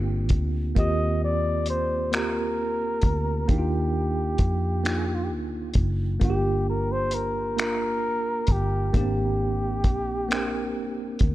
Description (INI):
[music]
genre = slow six-eight R&B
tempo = 44 BPM (dotted quarters)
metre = 6/8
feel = straight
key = Eb major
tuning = A4 = 441 Hz
[part]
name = breathy flugelhorn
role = melody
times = 0.0-11.2 s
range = F4 to Eb5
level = -29 LUFS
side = equal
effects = none
[part]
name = mellow tine electric piano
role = accompaniment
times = 0.0-11.3 s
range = Bb3 to Bb4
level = -29 LUFS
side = right 2 dB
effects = medium stereo tremolo
[part]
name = vintage muted fingered electric bass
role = bass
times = 0.0-11.3 s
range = Gb1 to F2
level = -27 LUFS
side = equal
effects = none
[part]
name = cloth-damped thuddy drum kit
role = drums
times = 0.3-11.3 s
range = finger snaps, hi-hat, kick drum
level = -24 LUFS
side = equal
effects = vintage 12-bit sampler grit
[sound]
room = studio reverb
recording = none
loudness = -23 LUFS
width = side -15 dB against mid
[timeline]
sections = 0.0-11.3 A section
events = none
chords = 0.0 Abmaj9#11 (rootless); 0.8 Eb69; 3.5 Ebmaj9; 6.2 Gm7; 8.9 Abmaj9#11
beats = | 0.76 2.12 | 3.49 4.85 | 6.22 7.58 | 8.94 10.31